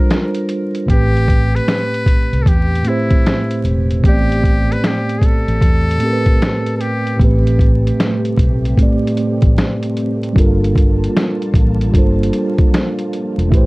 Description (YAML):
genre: lo-fi hip hop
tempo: 76 BPM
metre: 4/4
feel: swing 65% on 16ths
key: A phrygian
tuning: A4 = 442 Hz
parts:
  - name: trumpet with metal mute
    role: melody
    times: 0.0-7.2 s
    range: E4 to B4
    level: -23 LUFS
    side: left 2 dB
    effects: tape echo
  - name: mellow tine electric piano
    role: accompaniment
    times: 0.0-13.7 s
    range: A2 to D5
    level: -18 LUFS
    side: right 1 dB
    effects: medium stereo tremolo
  - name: lo-fi sampler-style drum kit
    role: drums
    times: 0.1-13.7 s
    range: finger snaps, hi-hat, kick drum, snare drum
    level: -14 LUFS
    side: equal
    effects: none
  - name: vintage muted fingered electric bass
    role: bass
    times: 0.9-13.7 s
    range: E1 to E2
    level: -16 LUFS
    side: equal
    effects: none
  - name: string machine, cellos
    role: sustained chords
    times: 7.2-13.7 s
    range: G3 to A5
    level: -24 LUFS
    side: left 1 dB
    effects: ensemble chorus
room: light reverb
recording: dark, warm production, vinyl crackle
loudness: -12 LUFS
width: side -23 dB against mid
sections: 0.0-7.2 A section; 7.2-13.7 B section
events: none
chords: 0.0 Gm9; 0.9 Am9; 10.4 Gm9